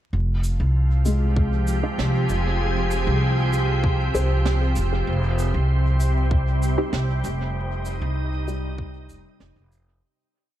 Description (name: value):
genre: ambient dub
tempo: 97 BPM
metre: 4/4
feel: straight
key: F minor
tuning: A4 = 440 Hz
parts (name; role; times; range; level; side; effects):
- soft additive organ-like pad; sustained chords; 0.7-10.0 s; C3 to Ab4; -27 LUFS; right 1 dB; ensemble chorus, built-in reverb
- upright bass; bass; 0.1-10.0 s; F1 to C2; -21 LUFS; equal; none
- shaker and snare drum; drums; 0.4-9.8 s; none; -34 LUFS; right 4 dB; dub echo
- felt-muted upright piano; arpeggios; 1.1-10.2 s; G3 to C5; -32 LUFS; left 2 dB; dub echo
- electronic kick drum; drums; 1.4-8.9 s; none; -23 LUFS; equal; none
- filtered dub chord stab; stabs; 1.8-6.9 s; C4 to Ab4; -30 LUFS; right 1 dB; phaser, dub echo
room: light reverb, small room ambience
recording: vinyl crackle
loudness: -20 LUFS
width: side -12 dB against mid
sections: 0.1-10.0 groove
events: fade-out 6.7-10.0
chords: 0.1 Fm; 5.1 Cm/F